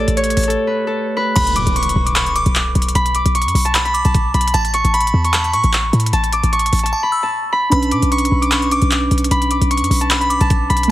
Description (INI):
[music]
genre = hip hop, trap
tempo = 151 BPM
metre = 4/4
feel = half-time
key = B minor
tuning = A4 = 440 Hz
[part]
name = Celtic harp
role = melody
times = 0.0-10.9 s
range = A4 to D6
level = -18 LUFS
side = left 1 dB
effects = tape echo
[part]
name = muted felt-like synth keys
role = accompaniment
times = 0.0-1.4, 7.7-10.9 s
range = A3 to C#5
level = -21 LUFS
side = right 3 dB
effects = chorus
[part]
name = short 808-style bass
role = bass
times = 0.0-10.9 s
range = A1 to B2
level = -17 LUFS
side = equal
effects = none
[part]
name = trap drum kit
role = drums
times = 0.1-10.9 s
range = crash cymbal, handclaps, hi-hat, kick drum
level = -20 LUFS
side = equal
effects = none
[part]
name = delicate synth tine bell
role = second line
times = 1.4-10.9 s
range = A5 to E6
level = -23 LUFS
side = left 1 dB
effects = chorus, tape echo
[part]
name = impact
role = sound effects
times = 1.4-3.0 s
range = none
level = -26 LUFS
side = equal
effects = none
[sound]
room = little or no reverb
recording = heavily compressed radio sound, multiband compression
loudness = -14 LUFS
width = side -14 dB against mid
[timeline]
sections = 0.0-1.4 A section; 1.4-10.9 B section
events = break 0.6-1.4; impact 1.4-3.0; silent gap 6.9-7.7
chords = 0.0 A7; 1.4 Bmadd9; 4.5 A; 7.7 Bmadd9